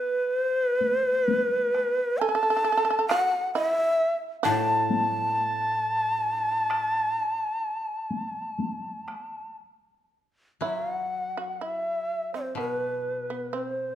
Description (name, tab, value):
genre	japanese traditional, Japanese chamber music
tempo	57-68 BPM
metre	4/4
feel	rubato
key	A kumoi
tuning	A4 = 440 Hz
part	breathy bright long shakuhachi	melody	0.0-13.9 s	B4 to A5	-25 LUFS	equal	none
part	shamisen	second line	0.0-13.9 s	B3 to A4	-30 LUFS	right 5 dB	none
part	taiko ensemble	percussion	0.8-9.3 s	none	-32 LUFS	left 2 dB	none
part	koto	accompaniment	4.5-13.9 s	A2 to F#3	-34 LUFS	left 3 dB	none
room	moderate recital hall reverb, RT60 1.4 s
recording	minimal, uncompressed stereo recording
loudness	-24 LUFS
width	side -11 dB against mid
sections	0.0-10.6 A section; 10.6-13.9 B section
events	none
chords	none